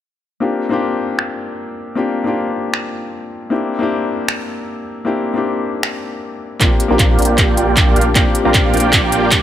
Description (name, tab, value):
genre	future bass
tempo	155 BPM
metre	4/4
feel	swing 54% on 16ths, half-time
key	unclear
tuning	A4 = 440 Hz
part	warm grand piano	accompaniment	0.4-9.4 s	Bb3 to G4	-19 LUFS	left 3 dB	sidechain pumping, dub echo
part	trap drum kit	drums	1.2-9.4 s	finger snaps, handclaps, hi-hat	-17 LUFS	right 1 dB	overdrive, low-pass filter on snare, low-pass filter on hats, low-pass filter on room
part	Celtic harp	arpeggios	6.6-9.4 s	D4 to Bb4	-24 LUFS	left 5 dB	sidechain pumping, low-pass filter, dub echo
part	dense compressed supersaw	riff	6.6-9.4 s	Bb3 to Bb5	-16 LUFS	right 2 dB	sidechain pumping, low-pass filter
part	saturated sub bass	bass	6.6-9.4 s	Bb1	-21 LUFS	right 1 dB	sidechain pumping
part	electronic kick drum	drums	6.6-9.4 s	none	-15 LUFS	right 1 dB	none
room	light reverb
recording	none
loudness	-14 LUFS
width	side -11 dB against mid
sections	0.4-6.6 A section; 6.6-9.4 B section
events	filter sweep on drum 0.4-6.6; build-up 6.6-9.4; drum fill 6.6-9.4; filter sweep on supersaw synth 6.6-9.4; filter sweep on harp 6.6-9.4; filter sweep 6.6-9.4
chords	0.4 Bb6; 3.5 C7; 6.6 Bb6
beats	| 0.41 0.80 1.19 1.57 | 1.96 2.35 2.74 3.12 | 3.51 3.90 4.29 4.67 | 5.06 5.45 5.83 6.22 | 6.61 6.99 7.38 7.77 | 8.16 8.54 8.93 9.32